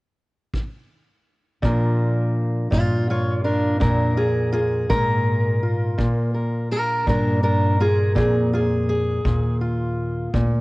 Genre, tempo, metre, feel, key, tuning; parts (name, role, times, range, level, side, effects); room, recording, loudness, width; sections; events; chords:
acoustic country blues, solo or duo; 55 BPM (dotted quarters); 12/8; straight; Bb mixolydian; A4 = 440 Hz
kick drum; drums; 0.5-10.5 s; -26 LUFS; equal; cassette tape
fingerpicked steel-string acoustic guitar; melody; 1.6-10.6 s; Bb2 to Db5; -20 LUFS; equal; cassette tape
upright bass; bass; 1.6-10.6 s; D2 to Bb2; -25 LUFS; equal
light reverb, studio reverb; home recording on cassette; -18 LUFS; side -22 dB against mid
0.0-1.6 A section; 1.6-10.6 B section
0.0 N.C.; 1.6 Bb7